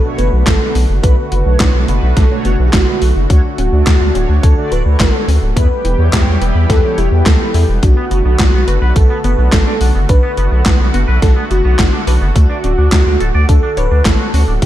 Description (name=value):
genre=synthwave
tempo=106 BPM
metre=4/4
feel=straight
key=B minor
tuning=A4 = 440 Hz
part: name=warm velvety synth lead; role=melody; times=0.0-14.7 s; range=E4 to B4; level=-21 LUFS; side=equal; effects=chorus, ping-pong delay
part: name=FM electric piano with soft pad layer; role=second line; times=0.0-14.7 s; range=E4 to B4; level=-26 LUFS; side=equal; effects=none
part: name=lush unison pad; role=sustained chords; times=0.0-14.7 s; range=D3 to G4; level=-23 LUFS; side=right 1 dB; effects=chorus
part: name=mellow synth brass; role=stabs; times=0.0-7.5 s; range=B2 to D5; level=-24 LUFS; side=right 3 dB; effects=chorus
part: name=impact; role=sound effects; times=0.1-1.0 s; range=none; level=barely audible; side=none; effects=none
part: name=wide unison pluck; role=arpeggios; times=0.2-14.7 s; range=A3 to C#5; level=-27 LUFS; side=left 2 dB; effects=none
part: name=round analog bass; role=bass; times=0.2-14.7 s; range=D1 to E2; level=-13 LUFS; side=equal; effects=none
part: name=gated 80s digital drum machine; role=drums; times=0.2-14.7 s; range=handclaps, hi-hat, snare drum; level=-18 LUFS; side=equal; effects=gated reverb, gated reverb snare, overdrive
part: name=electronic kick drum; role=drums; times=0.5-14.7 s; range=none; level=-13 LUFS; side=equal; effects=none
part: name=twangy electric guitar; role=riff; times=8.0-14.5 s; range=B3 to D5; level=-25 LUFS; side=right 2 dB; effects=lush chorus, ping-pong delay
room=little or no reverb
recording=dark, warm production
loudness=-10 LUFS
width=side -13 dB against mid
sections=0.0-14.7 A section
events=impact 0.0-1.0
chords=0.0 Bm7; 3.3 Dmaj7; 5.6 Em; 7.8 Bm7; 12.4 Dmaj7